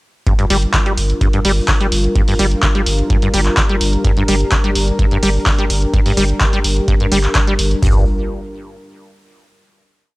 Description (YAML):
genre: acid house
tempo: 127 BPM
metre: 4/4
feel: straight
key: G minor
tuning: A4 = 440 Hz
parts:
  - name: dark analog pad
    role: sustained chords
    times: 0.3-8.0 s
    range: G3 to Bb4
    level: -22 LUFS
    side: left 1 dB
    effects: chorus, sidechain pumping
  - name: acid bass, saw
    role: riff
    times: 0.3-8.0 s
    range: G2 to G3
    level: -20 LUFS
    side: equal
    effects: tube saturation, ensemble chorus
  - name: booming analog drum machine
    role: drums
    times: 0.3-7.9 s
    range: hi-hat, kick drum, toms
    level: -16 LUFS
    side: equal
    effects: overdrive, studio reverb
  - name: punchy analog drum machine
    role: drums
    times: 0.3-7.8 s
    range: handclaps, hi-hat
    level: -20 LUFS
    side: equal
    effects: studio reverb
  - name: saturated sub bass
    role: bass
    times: 0.5-8.0 s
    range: G1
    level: -17 LUFS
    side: equal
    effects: sidechain pumping
room: digital ambience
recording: dry, gritty hardware recording, transformer saturation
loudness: -12 LUFS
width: side -21 dB against mid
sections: 0.3-7.8 groove; 7.8-9.7 final chord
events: none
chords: 0.3 Gm7